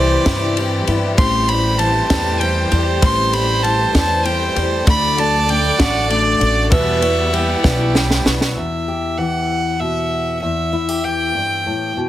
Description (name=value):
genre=indie folk with a building arrangement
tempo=65 BPM (dotted quarters)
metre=6/8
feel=straight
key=E minor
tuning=A4 = 441 Hz
part: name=warm fiddle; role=melody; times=0.0-12.0 s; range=C5 to C6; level=-20 LUFS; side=right 1 dB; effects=tape echo
part: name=warm fiddle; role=second line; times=0.0-8.6 s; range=F#4 to D5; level=-23 LUFS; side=right 5 dB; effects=none
part: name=picked steel-string acoustic guitar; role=accompaniment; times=0.0-8.6 s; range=E2 to G4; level=-21 LUFS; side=left 3 dB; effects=none
part: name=clear symphonic string section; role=sustained chords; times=0.0-8.5 s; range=C3 to F#5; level=-28 LUFS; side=left 1 dB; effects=none
part: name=upright bass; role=bass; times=0.0-8.5 s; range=A1 to G2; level=-20 LUFS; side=equal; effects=none
part: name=compact cocktail drum kit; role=drums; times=0.3-8.6 s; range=kick drum, ride cymbal, snare drum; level=-20 LUFS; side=equal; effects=none
part: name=fingerpicked steel-string acoustic guitar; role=accompaniment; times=8.6-12.1 s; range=E2 to G4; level=-21 LUFS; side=left 4 dB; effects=none
room=moderate large studio reverb, RT60 1.0 s, small room ambience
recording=heavily compressed radio sound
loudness=-14 LUFS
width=side -13 dB against mid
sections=0.0-8.6 A section; 8.6-12.1 B section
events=drum fill 7.6-8.6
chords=0.0 Cmaj7; 1.2 Am7; 4.9 D; 6.7 Emadd9; 8.6 Em